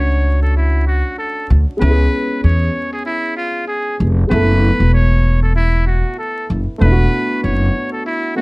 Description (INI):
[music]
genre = hip hop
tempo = 96 BPM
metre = 4/4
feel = swing 56% on 16ths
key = F# minor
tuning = A4 = 440 Hz
[part]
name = trumpet with metal mute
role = melody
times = 0.0-8.4 s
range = E4 to C#5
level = -21 LUFS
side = equal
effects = high-pass filter, low-pass filter, slapback echo
[part]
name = dark baby grand piano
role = accompaniment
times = 0.0-8.4 s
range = G#3 to A4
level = -22 LUFS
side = equal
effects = cassette tape, high-pass filter, low-pass filter
[part]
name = upright bass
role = bass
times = 0.0-7.7 s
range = E1 to E2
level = -13 LUFS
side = equal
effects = none
[sound]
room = little or no reverb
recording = dark, warm production, vinyl crackle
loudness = -13 LUFS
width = side -25 dB against mid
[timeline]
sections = 0.0-8.4 A section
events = none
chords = 0.0 Bm7 (rootless); 1.8 C#7(no3); 4.3 F#m7; 6.8 E9sus4